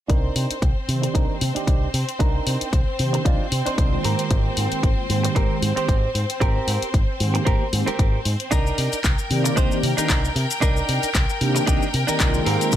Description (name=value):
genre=nu-disco, nu disco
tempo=114 BPM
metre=4/4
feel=swing 56% on 16ths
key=C minor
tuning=A4 = 440 Hz
part: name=bright symphonic string section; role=sustained chords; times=0.1-12.8 s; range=C4 to G5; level=-28 LUFS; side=left 1 dB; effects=sidechain pumping
part: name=direct-recorded clean electric guitar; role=riff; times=0.1-12.8 s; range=C4 to C5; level=-27 LUFS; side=right 3 dB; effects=wide subtle chorus, low-pass filter, slapback echo
part: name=fingered electric bass with an envelope filter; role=bass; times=0.1-12.8 s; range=Ab1 to C3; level=-24 LUFS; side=equal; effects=none
part: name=electronic kick drum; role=drums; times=0.1-12.8 s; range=none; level=-20 LUFS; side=equal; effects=none
part: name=house drum kit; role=drums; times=0.1-12.8 s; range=handclaps, hi-hat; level=-27 LUFS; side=left 2 dB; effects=none
part: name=mellow synth brass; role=accompaniment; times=0.9-12.8 s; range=Eb3 to D5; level=-26 LUFS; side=right 1 dB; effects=chorus, sidechain pumping, slapback echo
part: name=maracas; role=percussion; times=8.5-12.8 s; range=none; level=-31 LUFS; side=left 6 dB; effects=none
room=light reverb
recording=none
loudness=-19 LUFS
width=side -11 dB against mid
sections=0.1-12.8 A section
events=filter sweep on clean electric guitar 0.1-12.8; filter sweep on analog polysynth 0.1-12.8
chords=0.1 Cm9; 4.0 Abmaj9; 8.5 Cm9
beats=| 0.10 0.62 1.15 1.68 | 2.20 2.73 3.25 3.78 | 4.31 4.83 5.36 5.89 | 6.41 6.94 7.46 7.99 | 8.52 9.04 9.57 10.10 | 10.62 11.15 11.68 12.20 | 12.73